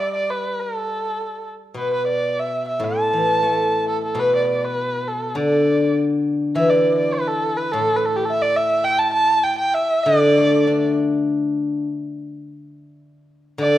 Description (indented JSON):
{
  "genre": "chinese traditional",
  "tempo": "101 BPM",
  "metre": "2/4",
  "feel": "straight",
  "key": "D zhi mode",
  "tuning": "A4 = 440 Hz",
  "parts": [
    { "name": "dark erhu", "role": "melody", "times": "0.0-10.9, 13.6-13.8 s", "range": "G4 to A5", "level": "-20 LUFS", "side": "right 1 dB", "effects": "none" },
    { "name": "steel-string zither", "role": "accompaniment", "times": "0.0-13.8 s", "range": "A2 to D4", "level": "-20 LUFS", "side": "left 1 dB", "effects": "none" }
  ],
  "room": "moderate recital hall reverb, RT60 1.3 s",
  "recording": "dark, warm production",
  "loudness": "-17 LUFS",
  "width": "side -13 dB against mid",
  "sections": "0.0-6.6 A section; 6.6-13.8 B section",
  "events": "none",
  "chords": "none",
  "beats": "| 0.57 1.17 | 1.78 2.39 | 2.98 3.58 | 4.17 4.78 | 5.38 5.99 | 6.58 7.17 | 7.76 8.34 | 8.92 9.50 | 10.08 10.67 | 11.27 11.86 | 12.45 13.03 | 13.61"
}